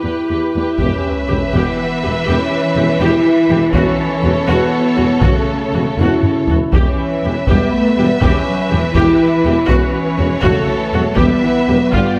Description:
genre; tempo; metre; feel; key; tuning
cinematic, epic orchestral film score; 81 BPM (dotted quarters); 6/8; straight; E dorian; A4 = 441 Hz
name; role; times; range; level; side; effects
warm studio violin section; melody; 0.0-12.2 s; B4 to E5; -27 LUFS; equal; none
dark symphonic violin section; second line; 0.0-12.2 s; G4 to B4; -27 LUFS; equal; none
warm symphonic viola section; accompaniment; 0.0-12.2 s; F4 to G4; -25 LUFS; equal; none
mellow French horn section; sustained chords; 0.0-12.2 s; A3 to E4; -20 LUFS; equal; none
dark symphonic cello section; bass; 0.0-12.2 s; E2 to A3; -23 LUFS; equal; none
mellow tuba; bass; 0.8-12.0 s; E1 to G1; -24 LUFS; equal; none
warm symphonic double bass section; bass; 0.8-12.0 s; E2 to G2; -22 LUFS; equal; none
taiko ensemble; drums; 0.8-12.2 s; none; -21 LUFS; equal; none
sub drop; sound effects; 0.8-2.3 s; none; -28 LUFS; equal; none
room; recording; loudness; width
moderate recital hall reverb, RT60 1.4 s; none; -15 LUFS; mono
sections
0.8-12.2 A section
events
impact 0.8-2.3; drum fill 6.0-6.7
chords
0.0 Em; 3.7 F#m/E; 6.7 Em; 9.7 F#m/E; 11.2 Em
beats
0.04 | 0.80 1.54 | 2.27 3.00 | 3.74 4.48 | 5.23 6.00 | 6.75 7.49 | 8.23 8.96 | 9.69 10.43 | 11.18 11.93

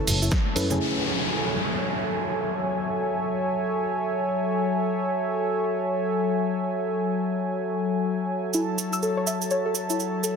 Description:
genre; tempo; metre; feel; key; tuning
deep house; free time; none; none; F# minor; A4 = 440 Hz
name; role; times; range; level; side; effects
warm analog pad; sustained chords; 0.0-10.4 s; F#3 to A5; -25 LUFS; equal; chorus, sidechain pumping
deep mellow chord stab; stabs; 0.0-1.0 s; A3 to B4; -30 LUFS; equal; chorus, sidechain pumping, tape echo
fingered electric bass; bass; 0.1-0.8 s; F#1 to F#2; -26 LUFS; equal; none
punchy analog drum machine; drums; 0.1-0.7 s; hi-hat, snare drum; -30 LUFS; right 1 dB; low-pass filter on hats, low-pass filter on snare, low-pass filter on room
cabasa; percussion; 0.1-0.8, 8.5-10.4 s; none; -30 LUFS; right 8 dB; none
congas; percussion; 0.1-0.8 s; none; -33 LUFS; left 2 dB; none
soft round pluck; arpeggios; 0.2-0.6, 8.5-10.3 s; E4 to E6; -29 LUFS; left 1 dB; chorus, sidechain pumping, tape echo
downlifter; sound effects; 0.8-4.7 s; none; -29 LUFS; equal; none
room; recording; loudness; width
wet plate reverb, RT60 2.2 s; dense, heavily limited modern master; -23 LUFS; side -6 dB against mid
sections
0.8-10.4 A section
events
band accent 0.3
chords
0.0 A/F#; 0.8 F#m7; 8.5 A/F#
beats
free time

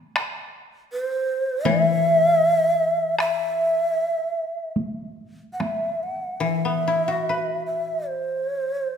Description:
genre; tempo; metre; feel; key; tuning
japanese traditional, Japanese chamber music; 71-82 BPM; 4/4; rubato; unclear; A4 = 441 Hz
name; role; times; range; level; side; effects
taiko ensemble; percussion; 0.2-5.8 s; none; -28 LUFS; equal; none
mellow hollow long shakuhachi; melody; 0.9-9.0 s; C5 to F#5; -21 LUFS; equal; none
koto; accompaniment; 1.7-8.9 s; E3 to B4; -25 LUFS; left 5 dB; none
room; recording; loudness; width
wet recital hall reverb, RT60 1.7 s; recorded in a church or concert hall; -20 LUFS; side -7 dB against mid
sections
0.0-6.4 A section; 6.4-9.0 B section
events
none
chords
none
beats
| 0.17 0.93 1.67 2.43 | 3.19 3.96 4.77 5.59 | 6.43 7.26 8.06 8.86

